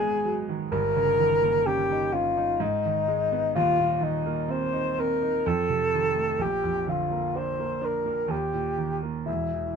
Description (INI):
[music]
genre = classical, romantic duo for bassoon and grand piano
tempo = 63 BPM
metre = 3/4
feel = rubato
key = Bb major from 3.6 s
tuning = A4 = 440 Hz
[part]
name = mellow bassoon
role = melody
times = 0.0-9.8 s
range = Eb4 to C5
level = -25 LUFS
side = left 2 dB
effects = none
[part]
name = clear concert grand piano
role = accompaniment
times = 0.0-9.8 s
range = Eb1 to D#4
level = -29 LUFS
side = right 5 dB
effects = none
[sound]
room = light reverb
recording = close, detailed microphones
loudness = -23 LUFS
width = side -6 dB against mid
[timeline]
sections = 0.0-9.8 A section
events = none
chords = 0.0 G#m7; 0.7 D#7/G; 2.6 G#m; 3.6 Cm7/Eb; 5.5 F7; 6.4 Bb; 8.3 Eb